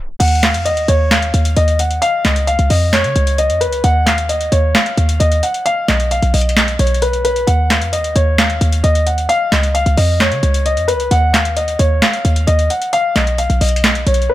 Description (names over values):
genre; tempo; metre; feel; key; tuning
hip hop, trap; 132 BPM; 4/4; half-time; Eb minor; A4 = 435 Hz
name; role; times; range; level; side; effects
short 808-style bass; bass; 0.0-14.3 s; Cb2 to Db3; -15 LUFS; equal; none
booming analog drum machine; drums; 0.1-14.3 s; crash cymbal, handclaps, hi-hat, snare drum; -18 LUFS; equal; none
dark grand piano; melody; 0.2-14.3 s; Cb5 to Gb5; -16 LUFS; left 1 dB; low-pass filter
room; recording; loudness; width
light reverb; tape stop; -12 LUFS; side -14 dB against mid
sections
0.2-14.3 A section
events
break 0.0; tape stop 0.0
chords
0.2 Ebmadd9; 2.0 Db; 3.8 Ebmadd9; 5.7 B; 7.5 Ebmadd9; 9.3 Db; 11.1 Ebmadd9; 12.9 B